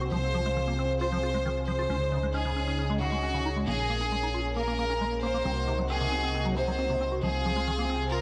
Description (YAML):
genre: trance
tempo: 135 BPM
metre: 4/4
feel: straight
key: Bb minor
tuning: A4 = 445 Hz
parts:
  - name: bright chamber violin section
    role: second line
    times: 0.0-8.2 s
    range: Gb4 to C5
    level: -33 LUFS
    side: equal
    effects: vintage 12-bit sampler grit, tape echo
  - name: lush unison pad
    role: sustained chords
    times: 0.0-8.2 s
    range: C3 to Ab4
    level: -37 LUFS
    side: equal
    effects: chorus
  - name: liquid acid bass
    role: arpeggios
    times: 0.0-8.2 s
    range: C3 to Gb4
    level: -37 LUFS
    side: equal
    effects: chorus, delay
  - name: solid FM bass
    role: bass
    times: 0.0-8.2 s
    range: Bb1 to Db2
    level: -34 LUFS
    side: equal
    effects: none
room: moderate lush hall reverb, RT60 2.5 s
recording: none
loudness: -29 LUFS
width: mono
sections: 0.0-8.2 A section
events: filter sweep on acid bass 0.0-8.2; filter sweep on analog synth pad 0.0-8.2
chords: 0.1 Fm/C; 1.9 Dbsus2; 3.7 Bbm7; 5.5 Cm7b5; 7.2 Fm/C